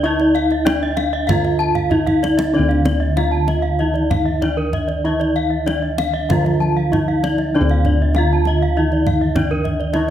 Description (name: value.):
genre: Balinese gamelan.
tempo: 96 BPM.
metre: 4/4.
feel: straight.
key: unclear.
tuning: A4 = 441 Hz.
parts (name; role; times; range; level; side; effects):
gamelan-type bronze metallophone; melody; 0.0-10.1 s; D4 to F4; -20 LUFS; right 1 dB; none.
gamelan-type bronze metallophone; arpeggios; 0.0-10.1 s; D5 to A5; -24 LUFS; left 7 dB; none.
gamelan-type bronze metallophone; arpeggios; 0.0-9.9 s; Bb4 to A5; -26 LUFS; right 6 dB; none.
gamelan-type bossed gongs; bass; 0.0-10.1 s; D2 to Eb4+35c; -19 LUFS; equal; none.
kendang; percussion; 0.2-10.1 s; none; -24 LUFS; right 2 dB; none.
gamelan-type bronze metallophone; accompaniment; 2.6-10.1 s; D3 to F3; -26 LUFS; equal; none.
room: moderate recital hall reverb, RT60 1.6 s.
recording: none.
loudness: -15 LUFS.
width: side -10 dB against mid.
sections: 0.0-10.1 A section.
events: drum fill 1.8-2.5.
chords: none.